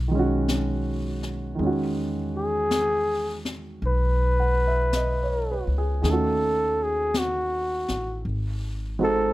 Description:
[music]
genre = jazz ballad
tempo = 54 BPM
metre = 4/4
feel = swing 67% on 8ths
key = unclear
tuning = A4 = 440 Hz
[part]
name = upright bass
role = bass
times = 0.0-9.3 s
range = G#1 to E2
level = -27 LUFS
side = equal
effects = none
[part]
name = warm grand piano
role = accompaniment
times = 0.1-9.3 s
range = D#3 to F#5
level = -28 LUFS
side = right 2 dB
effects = none
[part]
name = jazz brush drum kit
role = drums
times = 0.5-9.3 s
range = brushed snare drum, hi-hat, snare drum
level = -33 LUFS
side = left 3 dB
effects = none
[part]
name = trumpet with bucket mute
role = melody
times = 2.4-9.3 s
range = F#4 to B4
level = -24 LUFS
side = equal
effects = none
[sound]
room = little or no reverb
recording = none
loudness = -22 LUFS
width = side -17 dB against mid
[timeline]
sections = 0.0-9.3 A section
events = none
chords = 0.0 B69; 1.6 Emaj9; 6.0 D#m7b5; 8.2 G#7

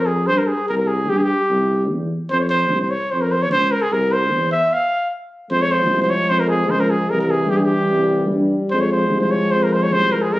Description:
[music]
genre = balkan folk, Balkan brass band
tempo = 150 BPM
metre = 2/4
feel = straight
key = F harmonic minor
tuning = A4 = 440 Hz
[part]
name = mellow trumpet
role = melody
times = 0.0-10.4 s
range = G4 to F5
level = -18 LUFS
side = equal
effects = plate reverb
[part]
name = mellow tuba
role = bass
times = 0.0-10.4 s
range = C2 to G2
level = -21 LUFS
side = equal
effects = none
[part]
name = dark French horn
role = accompaniment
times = 5.5-10.4 s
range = G3 to Ab3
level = -22 LUFS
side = left 2 dB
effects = none
[part]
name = warm euphonium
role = accompaniment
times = 5.5-10.4 s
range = E3 to F3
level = -24 LUFS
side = right 1 dB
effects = none
[sound]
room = moderate studio reverb, RT60 0.6 s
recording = recorded on a phone in the room, club reverb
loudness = -16 LUFS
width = side -17 dB against mid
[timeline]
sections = 0.0-5.5 A section; 5.5-10.4 A section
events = break 4.7-5.5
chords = 0.0 F5; 0.7 C; 2.3 F5; 3.9 C; 4.7 N.C.; 5.5 Fm; 7.1 C; 8.7 Fm

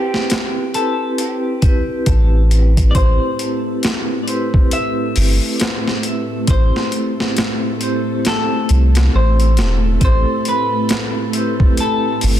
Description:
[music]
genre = trip hop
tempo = 68 BPM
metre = 4/4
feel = swing 60% on 16ths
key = A minor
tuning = A4 = 439 Hz
[part]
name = semi-hollow electric guitar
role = melody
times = 0.0-12.4 s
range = G4 to E5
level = -23 LUFS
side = left 2 dB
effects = tape echo
[part]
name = vibraphone with hard mallets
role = accompaniment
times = 0.0-12.4 s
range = C4 to C5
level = -22 LUFS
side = equal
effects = tremolo, tape echo
[part]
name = boom bap sampler-style drum kit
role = drums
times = 0.1-12.4 s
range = hi-hat, kick drum, snare drum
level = -18 LUFS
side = equal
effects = overdrive
[part]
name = soft dub sub bass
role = bass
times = 2.1-12.4 s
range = E1 to C2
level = -13 LUFS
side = equal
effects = none
[part]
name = string machine, cellos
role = sustained chords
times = 3.0-12.4 s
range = A3 to A4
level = -23 LUFS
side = right 1 dB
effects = ensemble chorus
[sound]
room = little or no reverb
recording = dense, heavily limited modern master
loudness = -14 LUFS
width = side -11 dB against mid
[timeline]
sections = 0.0-12.4 A section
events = none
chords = 0.0 Am7

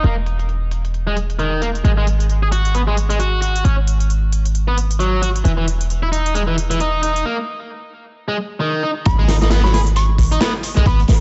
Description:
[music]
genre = breakbeat, breaks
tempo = 133 BPM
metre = 4/4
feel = swing 58% on 16ths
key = G# minor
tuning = A4 = 439 Hz
[part]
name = distorted electric guitar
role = riff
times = 0.0-11.0 s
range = D#3 to G#4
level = -24 LUFS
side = equal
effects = overdrive, low-pass filter, tape echo
[part]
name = warm 808-style bass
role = bass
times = 0.0-11.2 s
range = E1 to G#1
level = -19 LUFS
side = equal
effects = none
[part]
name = garage drum kit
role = drums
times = 0.0-11.2 s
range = handclaps, hi-hat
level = -33 LUFS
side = equal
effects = low-pass filter on hats, low-pass filter on snare, low-pass filter on room, tape echo
[part]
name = soft synth bell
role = melody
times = 9.1-11.2 s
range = B5 to C#6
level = -28 LUFS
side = equal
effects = chorus, old record sound, tape echo
[part]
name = crunchy breakbeat drum kit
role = drums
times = 9.1-11.2 s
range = hi-hat, kick drum, snare drum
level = -21 LUFS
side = equal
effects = tape echo
[part]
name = impact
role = sound effects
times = 9.1-10.9 s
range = none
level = -30 LUFS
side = equal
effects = none
[sound]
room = light reverb, studio reverb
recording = echo-heavy mix, nothing above 7.9 kHz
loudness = -18 LUFS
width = mono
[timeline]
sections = 0.0-9.1 A section; 9.1-11.2 B section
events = break 7.3-9.1; drop 9.1-11.2; impact 9.1-10.9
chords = 0.0 N.C.; 1.8 G#7(no3); 5.5 N.C.; 9.1 G#m

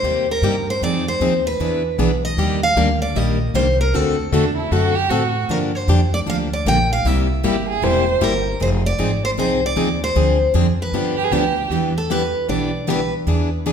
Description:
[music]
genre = acoustic string swing (jazz manouche)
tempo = 154 BPM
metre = 4/4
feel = swing 63% on 8ths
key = C minor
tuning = A4 = 438 Hz
[part]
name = picked steel-string acoustic guitar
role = melody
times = 0.0-13.1 s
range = A4 to G5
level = -22 LUFS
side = equal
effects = none
[part]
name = picked plugged-in steel-string acoustic guitar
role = accompaniment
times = 0.0-13.7 s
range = C3 to A4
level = -22 LUFS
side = left 4 dB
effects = none
[part]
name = picked steel-string acoustic guitar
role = accompaniment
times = 0.0-13.7 s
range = C3 to B4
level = -25 LUFS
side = right 6 dB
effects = none
[part]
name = upright bass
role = bass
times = 0.0-13.7 s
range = E1 to A2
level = -22 LUFS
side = equal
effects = none
[part]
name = warm violin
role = second line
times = 4.3-8.1, 11.2-11.7 s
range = D4 to C5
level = -22 LUFS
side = right 4 dB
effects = none
[sound]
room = wet recital hall reverb, RT60 1.5 s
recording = recorded in a church or concert hall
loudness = -16 LUFS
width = side -7 dB against mid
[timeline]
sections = 0.0-11.7 A section; 11.7-13.7 B section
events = steel-string acoustic guitar solo 11.7-13.7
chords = 0.0 Cm7; 0.8 Fm7; 1.6 E7; 2.4 Ebmaj9; 3.9 D7; 5.5 Gm7; 7.0 C7; 8.6 Fm7; 10.2 Dm7b5; 10.9 G7; 11.7 Em7

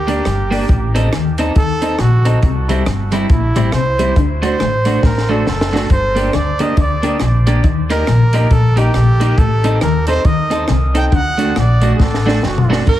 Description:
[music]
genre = ska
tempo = 138 BPM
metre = 4/4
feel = swing 60% on 8ths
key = unclear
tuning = A4 = 439 Hz
[part]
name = breathy trumpet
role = melody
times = 0.0-12.9 s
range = E4 to G5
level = -20 LUFS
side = right 1 dB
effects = dub echo, plate reverb
[part]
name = upright bass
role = bass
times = 0.0-13.0 s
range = F#1 to Eb2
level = -16 LUFS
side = equal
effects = none
[part]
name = electric guitar at the edge of break-up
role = accompaniment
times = 0.1-12.8 s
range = G3 to A4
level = -21 LUFS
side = right 2 dB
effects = spring reverb, dub echo
[part]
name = bright upright piano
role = stabs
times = 0.1-12.8 s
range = D4 to E5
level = -24 LUFS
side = left 2 dB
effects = none
[part]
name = compact cocktail drum kit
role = drums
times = 0.1-13.0 s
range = crash cymbal, hi-hat, kick drum, rim click, snare drum, toms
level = -16 LUFS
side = equal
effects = none
[part]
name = electric guitar at the edge of break-up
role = riff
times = 0.3-13.0 s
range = F#2 to Eb3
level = -22 LUFS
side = left 5 dB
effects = tremolo, dub echo
[part]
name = bright alto saxophone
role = melody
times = 12.9-13.0 s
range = Bb4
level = -16 LUFS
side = right 6 dB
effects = none
[sound]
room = moderate small room reverb, RT60 0.5 s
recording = heavily compressed radio sound, multiband compression, lossy compression artefacts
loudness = -12 LUFS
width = side -13 dB against mid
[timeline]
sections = 0.0-12.9 A section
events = trumpet solo 0.0-12.9; drum fill 5.0-5.9, 12.0-12.9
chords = 0.0 Gm; 0.7 Adim; 2.4 C; 4.2 D; 5.9 Gm; 7.6 Eb; 9.4 Adim; 11.1 D

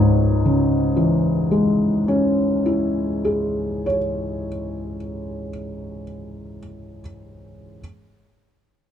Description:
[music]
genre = neoclassical minimalist piano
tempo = 40 BPM (dotted quarters)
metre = 6/8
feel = rubato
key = C# minor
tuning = A4 = 440 Hz
[part]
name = felt-muted upright piano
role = solo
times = 0.0-7.8 s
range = C#2 to C#5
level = -19 LUFS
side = left 1 dB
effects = none
[sound]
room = light reverb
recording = dark, warm production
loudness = -18 LUFS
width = side -9 dB against mid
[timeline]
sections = 0.0-5.6 A section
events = none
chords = 0.0 C#m

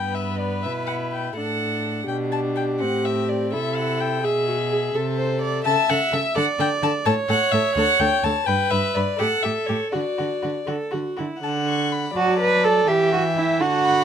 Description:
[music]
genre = quick classical-period movement for string quartet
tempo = 84 BPM (dotted quarters)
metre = 6/8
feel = straight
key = G major, D major from 5.7 s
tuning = A4 = 440 Hz
[part]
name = rich violin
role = melody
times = 0.0-14.0 s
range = C#5 to C#6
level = -25 LUFS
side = left 5 dB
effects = none
[part]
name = warm violin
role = second line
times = 0.0-14.0 s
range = B3 to F#5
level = -28 LUFS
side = left 4 dB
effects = none
[part]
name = warm viola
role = accompaniment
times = 0.0-14.0 s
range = D3 to E5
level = -25 LUFS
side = right 2 dB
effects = none
[part]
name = dark cello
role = bass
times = 0.0-14.0 s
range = D2 to B4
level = -24 LUFS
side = right 3 dB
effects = none
[sound]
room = light reverb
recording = close, detailed microphones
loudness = -19 LUFS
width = side -8 dB against mid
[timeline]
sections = 0.0-11.4 A section; 11.4-14.0 B section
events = none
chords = 0.0 G; 1.4 D/A; 2.1 G/B; 2.8 Am; 4.2 E/B; 4.9 Am/C; 5.7 A/C#; 6.4 D5; 7.1 A; 7.8 D5; 8.5 G; 9.2 A7; 9.9 D; 12.9 Em

